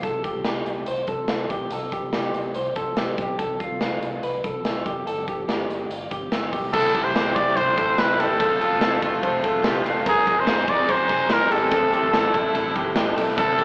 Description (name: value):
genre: jangly indie pop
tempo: 144 BPM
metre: 4/4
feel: straight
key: C major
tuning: A4 = 441 Hz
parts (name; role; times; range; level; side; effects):
- electric guitar through a small old amp; arpeggios; 0.0-13.6 s; F4 to C5; -26 LUFS; equal; spring reverb
- vintage muted fingered electric bass; bass; 0.0-13.6 s; E1 to C2; -39 LUFS; equal; none
- big rock drum kit; drums; 0.0-13.6 s; crash cymbal, hi-hat, kick drum, ride cymbal, snare drum; -26 LUFS; equal; none
- growling trumpet; melody; 6.7-13.6 s; Ab4 to D5; -20 LUFS; equal; none
- clear violin; second line; 6.7-13.6 s; C4 to F4; -32 LUFS; equal; none
- raw garage guitar; accompaniment; 6.7-13.6 s; F2 to A4; -26 LUFS; equal; overdrive
room: wet large studio reverb, RT60 1.3 s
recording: band playing live in one room, AM radio sound, faint mains hum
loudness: -20 LUFS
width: side -35 dB against mid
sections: 0.0-6.7 A section; 6.7-13.6 B section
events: none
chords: 0.0 C5; 3.4 Fadd9; 5.1 G7(no3); 6.7 C6; 8.4 F; 10.1 Ab6; 11.7 Am7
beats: | 0.03 0.45 0.87 1.29 | 1.71 2.13 2.55 2.97 | 3.39 3.81 4.23 4.65 | 5.07 5.49 5.91 6.32 | 6.74 7.16 7.57 7.99 | 8.40 8.82 9.23 9.65 | 10.06 10.48 10.89 11.30 | 11.72 12.13 12.55 12.96 | 13.38